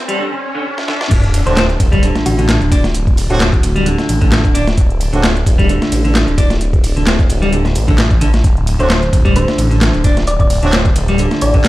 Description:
breakbeat, breaks; 131 BPM; 4/4; swing 55% on 16ths; A4 = 440 Hz
riser and sub drop; sound effects; 0.0-2.9 s; -20 LUFS; equal
clean electric guitar; riff; 0.1-11.7 s; D3 to D4; -18 LUFS; equal; vintage 12-bit sampler grit, dub echo
house drum kit; drums; 0.1-11.7 s; handclaps, hi-hat, ride cymbal; -24 LUFS; right 1 dB
dusty soul sampler-style drum kit; drums; 0.8-11.7 s; crash cymbal, hi-hat, kick drum, snare drum; -14 LUFS; equal; overdrive, high-pass filter on hats, high-pass filter on kick, high-pass filter on snare, high-pass filter on cymbals
phased detuned saw bass; bass; 1.1-11.7 s; D1 to A1; -15 LUFS; equal; phaser, tube saturation
thumb-piano-like synth pluck; melody; 1.5-3.9, 8.8-11.7 s; F#4 to D5; -21 LUFS; left 1 dB; chorus, small speaker sound, dub echo
bright horn section; stabs; 1.5-5.2, 8.8-10.7 s; F#3 to F#4; -24 LUFS; right 2 dB; dub echo
light reverb; played on a big sound system in a bare room, stone room reverb, high-pass filter; -11 LUFS; side -17 dB against mid
0.0-1.1 A section; 1.1-11.7 B section
build-up 0.0-1.1; riser 0.0-1.1; drum fill 0.8-1.1; drop 1.1-11.7; impact 1.1-2.9
0.0 N.C.; 1.1 D5

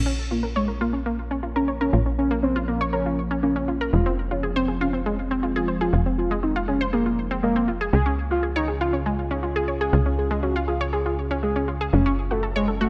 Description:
techno; 120 BPM; 4/4; straight; Bb minor; A4 = 441 Hz
fat analog lead; melody; 0.0-12.9 s; Ab3 to Ab4; -28 LUFS; equal; chorus, vintage 12-bit sampler grit, dub echo
evolving wavetable pad; sustained chords; 1.2-12.9 s; Db3 to Ab4; -33 LUFS; equal; chorus, built-in reverb
analog pluck; arpeggios; 0.0-12.9 s; Ab3 to Db5; -30 LUFS; equal; chorus, cassette tape, delay
tight sequencer bass; bass; 0.0-12.9 s; F1 to Db2; -29 LUFS; equal
light reverb, digital ambience; -24 LUFS; mono
0.0-12.9 A section
filter sweep on synth pluck 0.0-12.9; filter sweep on ambient pad 0.0-12.9
0.0 Bbm; 3.9 Fm; 7.9 Db; 11.9 Gbm

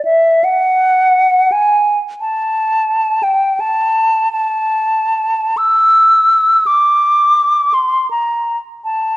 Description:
classical, free, expressive piece for unaccompanied flute; 65-91 BPM; 3/4; rubato; A4 = 440 Hz
hollow concert flute; solo; 0.0-9.2 s; E5 to E6; -11 LUFS; equal
moderate recital hall reverb, RT60 1.5 s; worn, warbling old tape, cassette tape, warbly pitch drift; -11 LUFS; side -18 dB against mid
0.0-9.2 A section

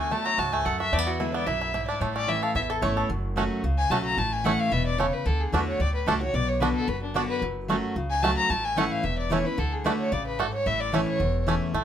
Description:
bluegrass; 222 BPM; 4/4; straight; A major; A4 = 439 Hz
bluegrass banjo; melody; 0.0-11.8 s; F#3 to A4; -28 LUFS; right 4 dB
dark fiddle; melody; 0.0-11.4 s; D4 to Bb5; -28 LUFS; left 2 dB
picked steel-string acoustic guitar; accompaniment; 0.0-11.8 s; E2 to F#4; -29 LUFS; left 1 dB
upright bass; bass; 0.0-11.8 s; E1 to E2; -30 LUFS; equal
lap resonator guitar; second line; 2.7-3.1 s; A4 to C#5; -31 LUFS; left 1 dB
light reverb; minimal, uncompressed stereo recording; -23 LUFS; side -9 dB against mid
0.0-3.1 A section; 3.1-11.7 B section
0.0 D; 0.9 E7; 2.0 A; 3.1 F#m; 4.2 A; 5.3 D; 6.3 Bm; 7.4 F#m; 8.5 A; 9.6 D; 10.7 A

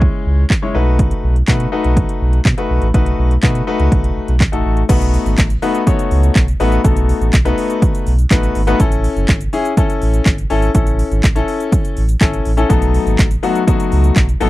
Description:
dance-pop; 123 BPM; 4/4; straight; A4 = 439 Hz
clear baby grand piano; accompaniment; 0.0-14.5 s; F#3 to C#5; -18 LUFS; left 4 dB; sidechain pumping
sub bass with octave; bass; 0.0-14.5 s; F#1 to B2; -15 LUFS; equal; sidechain pumping
house drum kit; drums; 0.0-14.5 s; crash cymbal, handclaps, hi-hat, kick drum, shaker; -15 LUFS; equal; overdrive
little or no reverb; dry, close 1970s-style studio recording; -12 LUFS; side -17 dB against mid
0.0-4.9 A section; 4.9-14.5 B section
0.0 C#m; 0.7 B7; 8.8 A; 12.7 B7

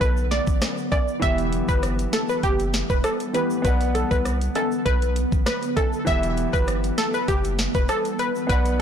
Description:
dancehall; 99 BPM; 4/4; straight; E minor; A4 = 439 Hz
glassy wavetable pluck; melody; 0.0-8.8 s; G4 to E5; -25 LUFS; equal; chorus, digital delay
clear baby grand piano; accompaniment; 0.0-8.8 s; E3 to F#5; -30 LUFS; right 2 dB
ethereal airy pad; sustained chords; 0.0-8.8 s; D3 to B3; -29 LUFS; left 1 dB; ensemble chorus, built-in reverb, sidechain pumping
saturated sub bass; bass; 0.0-8.8 s; E1 to C2; -26 LUFS; equal
afro-pop drum kit; drums; 0.0-8.8 s; hi-hat, kick drum, rim click, snare drum; -24 LUFS; equal; soft clipping on snare
tube shaker and timbales; percussion; 0.0-8.8 s; -39 LUFS; left 4 dB
little or no reverb; blown-out, overdriven recording, overdrive; -20 LUFS; side -8 dB against mid
0.0-8.8 A section
break 0.0-1.2
0.0 Bm; 1.2 Em; 3.6 Bm; 6.1 Em

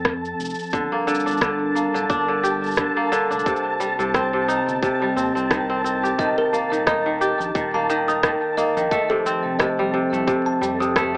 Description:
folktronica; 88 BPM; 4/4; swing 56% on 16ths; Eb lydian; A4 = 440 Hz
warbly tape-like pad; sustained chords; 0.0-11.2 s; C3 to G5; -28 LUFS; equal; chorus, built-in reverb
round analog bass; bass; 0.0-11.2 s; D1 to F2; -35 LUFS; equal
flickering grainy texture; texture; 0.0-11.2 s; A5; -27 LUFS; equal; built-in reverb
electronic kick drum; drums; 0.1-11.1 s; -27 LUFS; equal
electronic rim click and shaker; drums; 0.1-11.1 s; -25 LUFS; equal
kora; arpeggios; 0.7-11.2 s; C3 to G4; -21 LUFS; equal; digital delay
kalimba; second line; 6.2-10.9 s; A4 to Eb6; -25 LUFS; equal; vintage 12-bit sampler grit, digital delay
moderate small room reverb, RT60 0.6 s; vinyl crackle, AM radio sound; -18 LUFS; side -28 dB against mid
0.0-11.2 A section
0.0 Fadd9; 0.7 Gm; 3.5 Cm; 6.2 Eb; 8.9 Fadd9

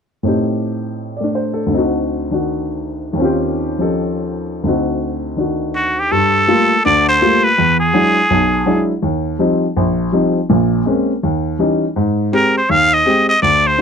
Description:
jazz; 164 BPM; 4/4; swing 64% on 8ths; G minor; A4 = 441 Hz
dark baby grand piano; accompaniment; 0.2-13.8 s; Bb1 to D5; -15 LUFS; left 1 dB
trumpet with straight mute; melody; 5.8-8.9, 12.3-13.8 s; F#4 to F5; -12 LUFS; equal
little or no reverb; close, detailed microphones; -13 LUFS; side -6 dB against mid
0.2-6.1 A section; 6.1-13.8 B section
0.2 Am7b5; 1.7 D7b9; 3.2 Eb13; 4.6 D7b9; 6.1 Gm9; 7.6 E9; 9.0 Eb69; 10.5 Bbm9; 11.2 Eb7b9; 12.0 Abmaj7

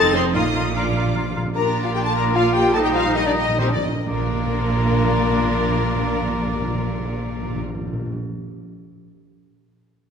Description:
quick classical-period movement for symphony orchestra; 126-154 BPM; 3/4; straight; Bb major; A4 = 440 Hz
warm symphonic violin section; melody; 0.0-7.6 s; Bb4 to A6; -27 LUFS; left 4 dB
clear clarinet; second line; 0.0-7.6 s; Eb4 to F4; -30 LUFS; left 2 dB
clear oboe; second line; 0.0-7.6 s; D5 to F5; -31 LUFS; right 2 dB
concert flute; second line; 0.0-7.6 s; C5 to C6; -29 LUFS; left 1 dB
rich studio violin section; second line; 0.0-7.6 s; F4 to A5; -32 LUFS; left 1 dB
rich chamber viola section; accompaniment; 0.0-7.6 s; G3 to F4; -26 LUFS; right 1 dB
mellow French horn section; sustained chords; 0.0-7.6 s; Bb3 to Bb4; -24 LUFS; left 4 dB
rich studio cello section; bass; 0.0-7.6 s; F2 to Bb2; -29 LUFS; right 4 dB
warm studio double bass section; bass; 0.0-7.6 s; F1 to Bb1; -28 LUFS; right 4 dB
timpani; percussion; 0.4-8.2 s; Bb2; -26 LUFS; equal
wet concert hall reverb, RT60 2.0 s; -18 LUFS; side -7 dB against mid
0.0-1.6 A section; 1.6-4.1 B section; 4.1-6.8 C section
timpani fill 0.4-1.6, 2.7-4.1; slowing down 1.0-4.1
0.4 Bb; 2.7 Eb/Bb; 4.1 Bb

